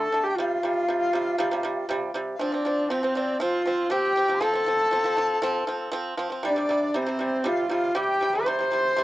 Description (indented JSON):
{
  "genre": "mongolian traditional, Mongolian folk",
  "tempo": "119 BPM",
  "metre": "4/4",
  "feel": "straight",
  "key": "F gong mode",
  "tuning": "A4 = 440 Hz",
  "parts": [
    { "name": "rich horsehead fiddle", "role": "melody", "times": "0.0-9.0 s", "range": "C4 to C5", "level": "-25 LUFS", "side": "equal", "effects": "cassette tape" },
    { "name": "mellow dizi", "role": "second line", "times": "0.0-9.0 s", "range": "C5 to D6", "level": "-29 LUFS", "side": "left 2 dB", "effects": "none" },
    { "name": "pipa", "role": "arpeggios", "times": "0.0-9.0 s", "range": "C3 to C4", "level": "-28 LUFS", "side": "right 2 dB", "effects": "none" }
  ],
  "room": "moderate booth ambience, RT60 0.2 s",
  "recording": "home recording on cassette",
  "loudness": "-22 LUFS",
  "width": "side -16 dB against mid",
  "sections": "0.0-2.4 A section; 2.4-9.0 B section",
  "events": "none",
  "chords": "0.4 C5; 2.4 F5; 6.4 C5"
}